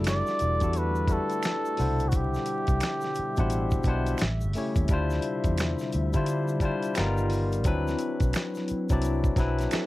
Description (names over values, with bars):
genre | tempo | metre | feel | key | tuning
R&B, neo-soul | 87 BPM | 4/4 | swing 62% on 16ths | unclear | A4 = 439 Hz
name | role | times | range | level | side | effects
barky tine electric piano | accompaniment | 0.0-9.9 s | B2 to F#5 | -30 LUFS | left 3 dB | none
hollow soft pad | sustained chords | 0.0-9.9 s | B2 to E5 | -37 LUFS | equal | chorus
vintage muted fingered electric bass | bass | 0.0-9.8 s | E1 to D3 | -28 LUFS | equal | none
dusty soul sampler-style drum kit | drums | 0.0-9.9 s | finger snaps, hi-hat, kick drum, snare drum | -29 LUFS | equal | none
trumpet with cup mute | melody | 0.1-4.2 s | F#4 to D5 | -30 LUFS | right 1 dB | none
finger snaps and tube shaker | percussion | 0.1-9.9 s | none | -43 LUFS | right 5 dB | none
hollow-body jazz guitar | second line | 9.7-9.9 s | E4 to A4 | -32 LUFS | right 8 dB | none
room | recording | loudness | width
little or no reverb | vinyl crackle | -24 LUFS | side -17 dB against mid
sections
0.0-9.9 A section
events
none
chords
0.0 Em11; 1.8 Cmaj9#11; 4.2 A7; 4.9 Dm11; 7.0 G7alt; 7.6 D13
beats
0.06 0.75 1.44 | 2.13 2.82 3.51 4.20 | 4.89 5.58 6.27 6.96 | 7.65 8.34 9.03 9.72